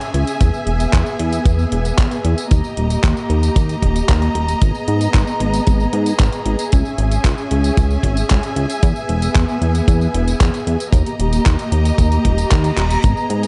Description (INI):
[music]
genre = italo disco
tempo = 114 BPM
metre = 4/4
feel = straight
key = unclear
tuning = A4 = 440 Hz
[part]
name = rich symphonic string section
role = sustained chords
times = 0.0-13.5 s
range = A#3 to A#5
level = -24 LUFS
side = equal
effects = none
[part]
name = detuned 8-bit digital drum machine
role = drums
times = 0.0-13.5 s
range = handclaps, hi-hat, tambourine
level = -29 LUFS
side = equal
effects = none
[part]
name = chorused synth bass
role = bass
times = 0.1-13.5 s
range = D#1 to G#2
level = -20 LUFS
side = equal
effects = none
[part]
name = kick drum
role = drums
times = 0.4-13.1 s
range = none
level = -18 LUFS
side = equal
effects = none
[part]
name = reverse cymbal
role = sound effects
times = 12.5-13.0 s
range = none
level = -36 LUFS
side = equal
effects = none
[sound]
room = light reverb, studio reverb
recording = dark, warm production, nothing above 10.8 kHz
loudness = -17 LUFS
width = mono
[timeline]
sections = 0.0-13.5 A section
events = reverse cymbal 12.5-13.0; drum fill 12.8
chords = 0.4 E; 2.5 D#; 4.6 G#madd9; 6.7 C#m; 8.8 E; 10.9 D#